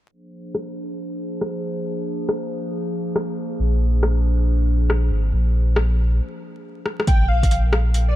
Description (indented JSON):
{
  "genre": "future garage",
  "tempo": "138 BPM",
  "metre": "4/4",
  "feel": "swing 64% on 16ths",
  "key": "unclear",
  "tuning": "A4 = 439 Hz",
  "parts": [
    { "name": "warbly tape-like pad", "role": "sustained chords", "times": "0.3-7.0 s", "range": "F3 to C5", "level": "-28 LUFS", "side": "equal", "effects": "chorus, built-in reverb, sidechain pumping" },
    { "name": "deep house drum kit", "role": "drums", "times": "0.5-8.1 s", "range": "hi-hat, rim click", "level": "-25 LUFS", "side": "left 1 dB", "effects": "overdrive" },
    { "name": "warm sub bass", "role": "bass", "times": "3.6-8.2 s", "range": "Ab1 to Bb1", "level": "-18 LUFS", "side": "equal", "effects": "tube saturation, sidechain pumping" },
    { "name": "airy dreamy lead", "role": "melody", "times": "7.1-8.2 s", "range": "D5 to G5", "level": "-25 LUFS", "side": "equal", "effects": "chorus, dub echo" },
    { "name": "electronic kick drum", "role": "drums", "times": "7.1-7.5 s", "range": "none", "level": "-18 LUFS", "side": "equal", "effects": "overdrive" },
    { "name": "backwards swelling texture", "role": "texture", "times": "7.3-8.2 s", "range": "Bb4", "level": "-47 LUFS", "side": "right 3 dB", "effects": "none" }
  ],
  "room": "little or no reverb",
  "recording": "dark, warm production, vinyl crackle, low-pass filter",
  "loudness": "-19 LUFS",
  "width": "side -14 dB against mid",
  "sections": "0.1-7.1 A section; 7.1-8.2 B section",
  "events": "filter sweep 0.1-7.1; break 6.2-7.1; drum fill 6.9",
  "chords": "0.1 Bb9; 7.1 Bb5"
}